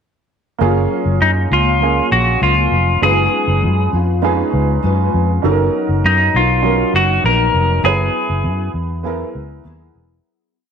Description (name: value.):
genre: indie pop, bedroom pop.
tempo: 100 BPM.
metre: 4/4.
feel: straight.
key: F# major.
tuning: A4 = 445 Hz.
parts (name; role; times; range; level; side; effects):
fingerpicked steel-string acoustic guitar; accompaniment; 0.6-10.7 s; F#3 to B4; -22 LUFS; left 11 dB; ensemble chorus, warbly pitch drift.
warm upright piano; accompaniment; 0.6-10.3 s; F#3 to E#5; -20 LUFS; right 10 dB; cassette tape.
vintage muted fingered electric bass; bass; 0.6-10.2 s; E1 to F#2; -17 LUFS; equal; none.
clean electric guitar; melody; 1.2-8.7 s; D#4 to A#4; -15 LUFS; left 1 dB; wide subtle chorus, slapback echo.
room: moderate spring reverb, RT60 1.5 s, small room ambience.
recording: 1960s-style stereo with parts hard left and right.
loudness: -13 LUFS.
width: side -7 dB against mid.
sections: 0.6-10.2 verse.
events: fade-out 7.8-10.2.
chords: 0.6 F#maj7; 3.0 C#7/F#; 5.4 Bmaj7/F#; 7.8 E/F#.